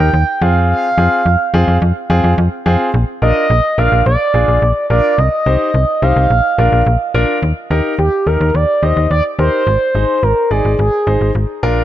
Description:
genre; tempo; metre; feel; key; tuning
synth-pop; 107 BPM; 4/4; straight; Eb major; A4 = 441 Hz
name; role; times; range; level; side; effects
expressive synth lead; melody; 0.0-11.3 s; G4 to G5; -15 LUFS; right 1 dB; chorus, tape echo
clear concert grand piano; accompaniment; 0.0-11.8 s; C4 to D5; -18 LUFS; left 1 dB; none
slap-like FM bass; bass; 0.0-11.8 s; Ab1 to F2; -13 LUFS; equal; none
room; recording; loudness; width
moderate recital hall reverb, RT60 1.6 s, small room ambience; none; -11 LUFS; side -12 dB against mid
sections
0.0-7.4 A section; 7.4-11.8 B section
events
none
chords
0.4 Fm; 2.9 Bb; 5.2 Cm; 6.3 Bb; 7.4 Eb; 9.7 Ab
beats
0.14 | 0.70 1.26 1.82 2.38 | 2.94 3.50 4.06 4.62 | 5.18 5.74 6.30 6.86 | 7.42 7.99 8.55 9.11 | 9.67 10.23 10.79 11.35

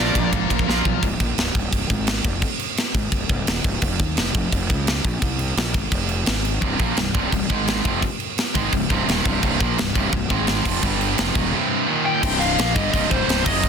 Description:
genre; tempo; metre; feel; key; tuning
heavy metal; 171 BPM; 4/4; straight; C minor; A4 = 440 Hz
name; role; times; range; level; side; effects
bluesy overdriven lead guitar; melody; 0.0-0.3, 12.1-13.7 s; C5 to G5; -24 LUFS; left 3 dB; distortion
distorted electric guitar; riff; 0.0-1.0, 6.6-13.7 s; C2 to Bb3; -24 LUFS; right 17 dB; overdrive
scooped high-gain guitar; riff; 0.0-1.0, 6.6-13.7 s; C2 to Bb4; -26 LUFS; left 16 dB; distortion
tight distorted guitar; riff; 0.0-1.0 s; Bb2 to Bb3; -27 LUFS; equal; distortion
fuzz fingered electric bass; bass; 0.0-13.7 s; C1 to Eb2; -25 LUFS; equal; overdrive
tight metal drum kit; drums; 0.2-13.7 s; crash cymbal, kick drum, ride cymbal, snare drum; -22 LUFS; equal; none
room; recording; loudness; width
little or no reverb; dense, heavily limited modern master; -18 LUFS; side -7 dB against mid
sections
0.0-1.0 A section; 1.0-12.2 B section; 12.2-13.7 C section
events
drum fill 0.7-1.0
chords
0.0 Bb; 1.0 Bbsus2/C; 1.9 N.C.; 2.3 Cm; 3.8 Ebsus2/F; 4.7 N.C.; 5.6 Fmadd11; 6.3 N.C.; 6.6 C5; 7.5 Ab5; 7.9 Cm; 10.3 Ab5; 10.7 F5; 10.8 G5; 11.2 Cm; 11.9 Eb5; 12.2 C5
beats
0.33 0.68 | 1.03 1.38 1.73 2.08 | 2.43 2.78 3.13 3.48 | 3.83 4.18 4.53 4.88 | 5.23 5.58 5.93 6.28 | 6.63 6.98 7.33 7.68 | 8.03 8.38 8.73 9.08 | 9.43 9.78 10.13 10.48 | 10.83 11.18 11.53 11.88 | 12.23 12.58 12.93 13.28 | 13.63

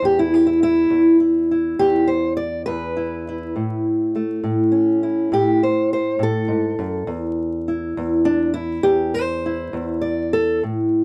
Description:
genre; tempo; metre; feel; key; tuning
acoustic country blues, solo or duo; 68 BPM (dotted quarters); 12/8; straight; unclear; A4 = 440 Hz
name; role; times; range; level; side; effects
fingerpicked old ladder-braced acoustic guitar; solo; 0.0-11.0 s; E2 to D5; -20 LUFS; equal; none
room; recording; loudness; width
little or no reverb; dry, close 1970s-style studio recording, vinyl crackle; -20 LUFS; mono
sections
0.0-10.6 A section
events
steel-string acoustic guitar solo 0.0-10.6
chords
0.0 N.C.; 3.6 A; 7.1 N.C.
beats
| 0.03 0.91 1.79 2.67 | 3.55 4.43 5.32 6.20 | 7.08 7.96 8.84 9.73 | 10.61

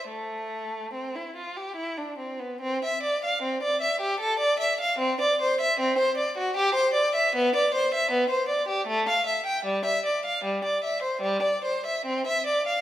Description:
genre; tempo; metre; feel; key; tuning
classical, baroque-style suite movement for unaccompanied violin; 70-79 BPM; 3/4; rubato; C major; A4 = 440 Hz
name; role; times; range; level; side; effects
rich violin; solo; 0.0-12.8 s; G3 to G5; -24 LUFS; equal; none
room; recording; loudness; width
wet recital hall reverb, RT60 1.6 s; minimal, uncompressed stereo recording; -24 LUFS; side -12 dB against mid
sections
0.0-2.6 A section; 2.6-12.8 A section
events
none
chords
none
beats
| 0.10 0.94 1.76 | 2.61 3.42 4.20 | 4.98 5.75 6.52 | 7.31 8.10 8.86 | 9.63 10.42 11.22 | 12.05

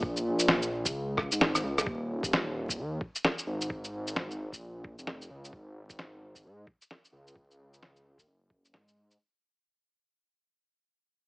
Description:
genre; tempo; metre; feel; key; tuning
future garage; 131 BPM; 4/4; swing 60% on 16ths; unclear; A4 = 440 Hz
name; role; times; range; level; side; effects
dark detuned saw bass; bass; 0.0-9.2 s; Eb1 to Ab2; -34 LUFS; equal; sidechain pumping
electronic kick drum; drums; 0.0-8.6 s; none; -37 LUFS; equal; none
electronic shaker, snare drum and rim click; drums; 0.2-9.2 s; none; -28 LUFS; equal; none
room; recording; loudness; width
light reverb; vinyl crackle, small speaker sound; -28 LUFS; side -25 dB against mid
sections
0.0-9.2 A section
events
fade-out 0.0-9.2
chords
none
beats
| 0.03 0.48 0.94 1.40 | 1.86 2.32 2.77 3.23 | 3.69 4.15 4.61 5.07 | 5.52 5.98 6.44 6.90 | 7.36 7.81 8.27 8.73

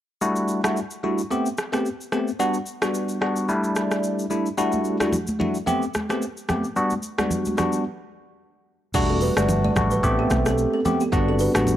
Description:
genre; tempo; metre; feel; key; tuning
afrobeats; 110 BPM; 4/4; swing 55% on 16ths; E minor; A4 = 440 Hz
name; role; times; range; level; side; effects
bell-like tine electric piano; accompaniment; 0.2-11.8 s; G3 to G4; -22 LUFS; equal; phaser
afro-pop drum kit; drums; 0.2-11.8 s; crash cymbal, hi-hat, kick drum, rim click, shaker; -28 LUFS; equal; none
congas; percussion; 4.7-11.8 s; none; -28 LUFS; right 1 dB; none
fingered electric bass; bass; 8.9-11.8 s; E1 to B1; -24 LUFS; equal; none
kalimba; riff; 9.1-11.5 s; B3 to D5; -26 LUFS; right 3 dB; tape echo
room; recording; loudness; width
light reverb, digital ambience; dry, gritty hardware recording; -21 LUFS; side -12 dB against mid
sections
0.2-8.9 A section; 8.9-11.8 B section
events
break 7.9-8.9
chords
0.2 Em11; 1.3 Am9; 2.4 Gmaj7; 3.5 A7sus4; 4.6 Em11; 5.7 Am9; 6.8 Gmaj7; 7.9 N.C.; 8.9 Em11; 10.0 Am9; 11.1 Gmaj7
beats
| 0.21 0.76 1.31 1.85 | 2.40 2.94 3.49 4.03 | 4.58 5.12 5.67 6.21 | 6.76 7.31 7.85 8.40 | 8.94 9.49 10.03 10.58 | 11.12 11.67

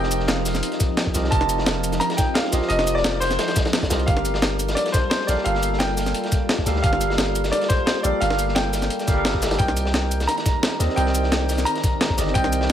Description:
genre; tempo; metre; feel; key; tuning
liquid drum and bass; 174 BPM; 4/4; straight; unclear; A4 = 440 Hz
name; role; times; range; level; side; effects
bright concert grand piano; melody; 0.0-12.7 s; C5 to Bb5; -26 LUFS; right 1 dB; tape echo
barky tine electric piano; accompaniment; 0.0-12.7 s; F3 to F5; -27 LUFS; equal; overdrive, wide subtle chorus
ethereal airy pad; sustained chords; 0.0-12.7 s; Eb3 to A5; -30 LUFS; equal; ensemble chorus, built-in reverb
long sustained 808-style bass; bass; 0.0-12.7 s; F1 to Eb2; -25 LUFS; equal; none
crunchy breakbeat drum kit; drums; 0.0-12.7 s; hi-hat, snare drum; -29 LUFS; equal; high-pass filter on hats, high-pass filter on snare, high-pass filter on room
breakbeat sampler-style drum kit; drums; 0.1-12.7 s; cabasa, hi-hat, snare drum; -25 LUFS; equal; none
electronic kick drum; drums; 0.8-12.4 s; none; -22 LUFS; equal; none
room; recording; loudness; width
light reverb, digital ambience; none; -19 LUFS; side -10 dB against mid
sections
0.0-12.7 A section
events
none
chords
0.0 F7sus4; 4.1 Gm9; 9.6 Cm9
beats
0.28 0.63 0.97 | 1.32 1.67 2.01 2.35 | 2.70 3.04 3.39 3.73 | 4.08 4.42 4.77 5.11 | 5.46 5.80 6.15 6.49 | 6.84 7.18 7.53 7.87 | 8.22 8.56 8.91 9.25 | 9.60 9.94 10.29 10.63 | 10.97 11.32 11.66 12.01 | 12.35 12.70

